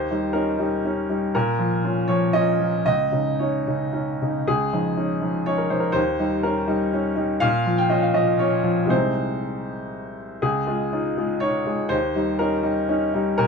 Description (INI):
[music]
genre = neoclassical minimalist piano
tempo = 121 BPM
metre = 3/4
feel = rubato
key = Db lydian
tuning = A4 = 440 Hz
[part]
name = clear upright piano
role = solo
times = 0.0-13.5 s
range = C2 to G5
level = -20 LUFS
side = equal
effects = none
[sound]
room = light reverb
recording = minimal, uncompressed stereo recording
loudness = -20 LUFS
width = side -5 dB against mid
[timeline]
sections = 0.0-4.5 A section; 4.5-13.5 A section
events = none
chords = 0.0 Eb7; 1.3 Bbm; 2.9 Dbsus2; 4.5 Dbadd9; 6.0 Eb7; 7.4 Bbm; 8.9 Ab/C; 10.4 Dbadd9; 11.9 Eb7